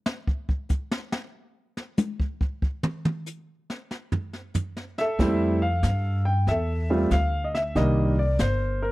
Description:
jazz piano trio; 94 BPM; 4/4; swing 67% on 8ths; F major from 5.2 s; A4 = 440 Hz
jazz brush drum kit; drums; 0.1-8.9 s; brushed snare drum, crash cymbal, hi-hat, kick drum, snare drum, toms; -26 LUFS; equal
clear concert grand piano; melody; 5.0-8.9 s; Eb3 to G5; -24 LUFS; equal; slapback echo
upright bass; bass; 5.2-8.9 s; G1 to G2; -24 LUFS; equal
small room ambience; dry, close 1970s-style studio recording; -23 LUFS; side -19 dB against mid
0.0-5.2 A section; 5.2-8.9 B section
grand piano solo 0.0-5.2; drum solo 0.0-5.2
0.0 N.C.; 5.2 Fmaj9; 7.8 Cm9

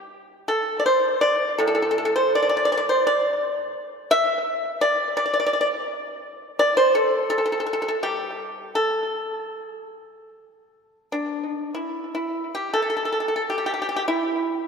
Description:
chinese traditional, Chinese solo plucked strings; 70-88 BPM; 4/4; rubato; A yu mode; A4 = 440 Hz
pipa; solo; 0.0-14.7 s; A2 to E5; -21 LUFS; equal; analog delay
wet lush hall reverb, RT60 2.7 s; dreamy mix soaked in reverb; -20 LUFS; side -5 dB against mid
0.0-11.9 A section; 11.9-14.7 B section

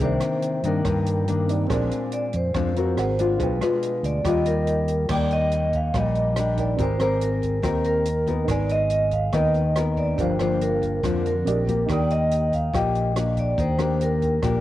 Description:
bossa nova; 141 BPM; 4/4; straight; Eb major; A4 = 440 Hz
vibraphone with medium hard mallets; melody; 0.0-14.6 s; Bb4 to F5; -25 LUFS; right 1 dB; cassette tape
dark baby grand piano; accompaniment; 0.0-14.6 s; C4 to Eb6; -33 LUFS; right 8 dB; cassette tape
nylon-string guitar; accompaniment; 0.0-14.6 s; G2 to Bb4; -26 LUFS; left 4 dB; cassette tape
fingered electric bass; bass; 0.0-14.6 s; G1 to G2; -25 LUFS; right 1 dB; tube saturation
compact cocktail drum kit; drums; 0.0-14.5 s; crash cymbal, hi-hat, kick drum, rim click; -32 LUFS; right 1 dB; cassette tape
light reverb; home recording on cassette; -20 LUFS; side -14 dB against mid
0.0-5.1 A section; 5.1-14.6 B section
0.0 Cm9; 1.7 Bb9; 3.0 Ab9; 3.4 G7b9/B; 4.2 Ebmaj9; 5.1 Ebmaj7; 6.8 Abmaj9; 8.5 Abmadd9; 10.2 Gm7; 11.5 Bb13; 11.9 Ebmaj7

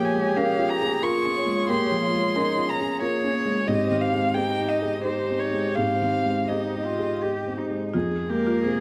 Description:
neoclassical piano and strings; 82-92 BPM; 3/4; rubato; A4 = 440 Hz
rich violin; melody; 0.0-8.8 s; Bb4 to Db6; -29 LUFS; equal
dark cello; second line; 0.0-8.8 s; Bb3 to G4; -31 LUFS; equal
felt-muted upright piano; accompaniment; 0.0-8.8 s; F2 to Ab4; -30 LUFS; equal
warm viola; accompaniment; 0.0-8.8 s; G4 to Ab4; -33 LUFS; equal
buzzing marimba with hard mallets; arpeggios; 0.0-8.7 s; F4 to Ab5; -34 LUFS; equal
moderate large studio reverb, RT60 1.4 s; -24 LUFS; mono
0.0-7.9 A section
0.0 Bbm7; 3.7 Abmaj7; 7.9 Fm

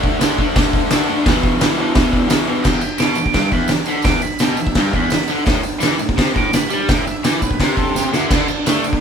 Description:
garage rock duo or trio; 170 BPM; 4/4; straight; A4 = 441 Hz
raw garage guitar; riff; 0.0-9.0 s; E2 to D4; -19 LUFS; left 1 dB; overdrive
oversized low-tuned drum kit; drums; 0.0-9.0 s; crash cymbal, hi-hat, kick drum, snare drum; -16 LUFS; equal
tambourine; percussion; 0.2-8.9 s; -31 LUFS; right 9 dB
octave-fuzz lead guitar; melody; 2.6-9.0 s; D4 to D6; -24 LUFS; right 5 dB; distortion
light reverb; band playing live in one room; -14 LUFS; side -7 dB against mid
0.0-2.7 A section; 2.7-9.0 B section
drum fill 8.0-8.3
0.0 D5; 1.3 E5; 5.5 A5; 8.3 D5

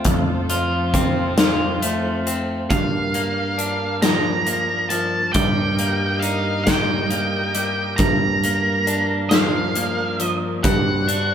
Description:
post-rock; 45 BPM (dotted quarters); 6/8; straight; A4 = 440 Hz
rich studio string section; sustained chords; 0.0-11.3 s; F3 to Eb5; -30 LUFS; equal
electric guitar at the edge of break-up; arpeggios; 0.0-11.3 s; F2 to F4; -25 LUFS; left 1 dB
big rock drum kit; drums; 0.0-11.3 s; hi-hat, kick drum, snare drum; -21 LUFS; equal
picked electric bass; bass; 0.1-11.3 s; F2 to G2; -25 LUFS; right 1 dB
octave-fuzz lead guitar; melody; 2.7-11.3 s; F5 to Bb5; -23 LUFS; right 1 dB; distortion
moderate stone room reverb, RT60 1.3 s; band playing live in one room; -18 LUFS; side -8 dB against mid
0.0-2.7 A section; 2.7-11.3 B section
0.1 F; 2.7 Bb/G; 5.4 Eb/G; 8.0 Bb/G; 10.6 D7/G

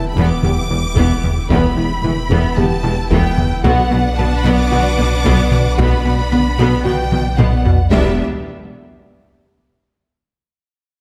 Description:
cinematic, hybrid orchestral and electronic film score; 112 BPM; 4/4; straight; E minor; A4 = 440 Hz
rich symphonic violin section; melody; 0.0-8.2 s; E5 to D6; -26 LUFS; equal
rich symphonic violin section; second line; 0.0-8.2 s; G4 to G5; -30 LUFS; equal
rich symphonic viola section; accompaniment; 0.0-8.2 s; B3 to E4; -24 LUFS; equal
plucky analog bass; riff; 0.0-7.8 s; E2 to B3; -22 LUFS; equal
warm sub bass; bass; 0.0-8.2 s; E1 to B1; -23 LUFS; equal
rich symphonic double bass section; bass; 0.1-8.2 s; E1 to B1; -24 LUFS; equal
clear symphonic cello section; bass; 0.2-8.2 s; E2 to B2; -24 LUFS; equal
dark French horn section; sustained chords; 0.4-8.1 s; B3 to G4; -26 LUFS; equal
taiko ensemble; drums; 0.4-9.0 s; -23 LUFS; equal
moderate scoring stage reverb, RT60 1.7 s; -15 LUFS; mono
0.0-7.9 A section; 7.9-10.1 B section
drum fill 7.1-7.9
0.0 Em; 3.6 Bm; 7.9 E7(no3)

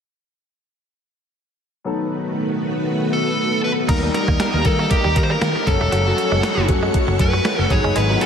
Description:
1980s-style pop; 118 BPM; 4/4; swing 55% on 16ths; B mixolydian; A4 = 440 Hz
warm grand piano; accompaniment; 1.8-8.3 s; F#3 to A#4; -24 LUFS; left 4 dB; wide subtle chorus
string machine, full ensemble; sustained chords; 1.9-8.3 s; D#3 to B5; -23 LUFS; equal; ensemble chorus
dark smooth lead guitar; melody; 3.1-8.3 s; G4 to C#5; -22 LUFS; equal; overdrive, diffuse ambient delay
direct-recorded clean electric guitar; riff; 3.9-8.2 s; F#3 to D#4; -27 LUFS; right 3 dB; analog chorus, diffuse ambient delay
fingered electric bass; bass; 3.9-8.1 s; E1 to D#3; -21 LUFS; equal
gated 80s digital drum machine; drums; 3.9-8.3 s; crash cymbal, hi-hat, kick drum, snare drum; -21 LUFS; equal; gated reverb, gated reverb snare
wet cathedral reverb, RT60 6.4 s; dreamy mix soaked in reverb; -16 LUFS; side -7 dB against mid
1.9-3.9 A section; 3.9-8.3 B section
1.9 B7; 3.9 D#; 5.7 F#m; 7.7 G#m7

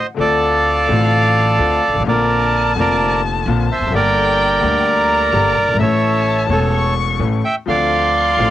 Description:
tango; 128 BPM; 4/4; rubato; D minor; A4 = 440 Hz
bandoneon; melody; 0.0-8.5 s; A4 to G5; -15 LUFS; right 2 dB; cassette tape
clear grand piano; accompaniment; 0.1-8.5 s; E1 to A4; -21 LUFS; left 6 dB
warm violin; second line; 0.2-8.5 s; F5 to C#6; -23 LUFS; left 6 dB
upright bass; bass; 0.2-8.5 s; E1 to D2; -20 LUFS; right 2 dB
bandoneon; stabs; 7.7-8.5 s; C4 to F4; -28 LUFS; right 9 dB
moderate booth ambience, RT60 0.2 s; home recording on cassette; -13 LUFS; side -13 dB against mid
0.2-8.5 A section
0.2 Dm7; 2.1 Bbadd9; 3.9 Gm; 5.8 A; 7.7 Dm7

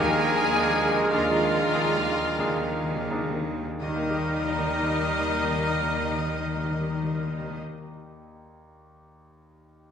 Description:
classical, romantic movement for piano and orchestra; 40-55 BPM; 3/4; rubato; Eb major; A4 = 440 Hz
clear concert grand piano; melody; 0.0-9.9 s; Eb2 to Eb5; -32 LUFS; left 1 dB
rich chamber violin section; melody; 0.0-7.6 s; Eb5 to Ab5; -32 LUFS; left 5 dB
bright clarinet; second line; 0.0-7.6 s; Bb4; -37 LUFS; left 1 dB
mellow concert flute; second line; 0.0-7.6 s; Bb4 to F5; -38 LUFS; left 1 dB
mellow oboe; second line; 0.0-7.6 s; F4 to Bb4; -33 LUFS; right 2 dB
rich studio violin section; second line; 0.0-7.6 s; Eb4 to Ab4; -35 LUFS; left 2 dB
dark bassoon; accompaniment; 0.0-7.6 s; G3 to Ab3; -32 LUFS; right 2 dB
rich studio viola section; accompaniment; 0.0-7.6 s; Eb4 to Ab4; -36 LUFS; equal
mellow French horn section; sustained chords; 0.0-7.6 s; Bb3 to Eb4; -36 LUFS; left 4 dB
warm trombone section; sustained chords; 0.0-7.6 s; Eb3 to Ab3; -36 LUFS; right 3 dB
warm trumpet; stabs; 0.0-7.6 s; Bb4; -34 LUFS; equal
rich symphonic cello section; bass; 0.0-7.6 s; Eb3; -34 LUFS; right 3 dB
rich symphonic double bass section; bass; 0.0-7.6 s; Eb2; -37 LUFS; right 4 dB
timpani; percussion; 0.0-7.6 s; Eb3; -33 LUFS; left 3 dB
wet scoring stage reverb, RT60 1.6 s; -23 LUFS; side -8 dB against mid
0.0-3.8 A section; 3.8-7.7 B section
slowing down 0.0-3.8; timpani fill 0.0-3.8
0.0 Bb7/Eb; 3.8 Eb

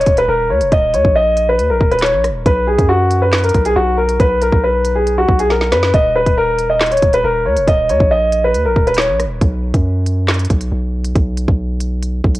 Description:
hip hop, drill; 138 BPM; 4/4; half-time; Eb minor; A4 = 439 Hz
warm concert grand piano; melody; 0.0-9.2 s; F#4 to Eb5; -13 LUFS; equal; low-pass filter, cassette tape
long sustained 808-style bass; bass; 0.0-12.4 s; Eb1 to F#2; -18 LUFS; equal
drill drum kit; drums; 0.0-12.4 s; handclaps, hi-hat, kick drum, rim click, snare drum; -16 LUFS; equal; cassette tape
light reverb; home recording on cassette; -12 LUFS; side -17 dB against mid
0.0-12.4 A section
drum fill 5.5-5.9; break 9.4-12.4
0.0 Eb5; 2.5 B5; 5.9 Eb5; 9.4 B5

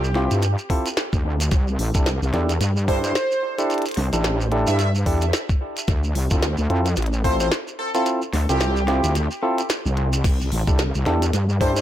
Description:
glitch hop; 110 BPM; 4/4; swing 58% on 16ths; D minor; A4 = 444 Hz
plucky unison lead; melody; 0.0-11.8 s; G4 to E5; -28 LUFS; equal; lush chorus, analog delay
wobble bass; bass; 0.0-11.8 s; A1 to G2; -21 LUFS; equal; chorus
shekere; percussion; 0.0-11.8 s; -32 LUFS; right 3 dB; analog delay
barky tine electric piano; stabs; 0.2-11.8 s; C4 to A4; -25 LUFS; right 1 dB; vintage 12-bit sampler grit, sidechain pumping, analog delay
glitchy drum kit; drums; 0.2-11.8 s; crash cymbal, hi-hat, snare drum; -29 LUFS; equal; small room reverb, analog delay
electronic kick drum; drums; 0.7-11.7 s; -20 LUFS; equal; small room reverb
light reverb, digital ambience; echo-heavy mix; -19 LUFS; side -12 dB against mid
0.0-11.8 A section
kick drops out 9.2-10.2
0.0 Dm9; 1.5 C69; 5.9 Dm9; 10.2 C69

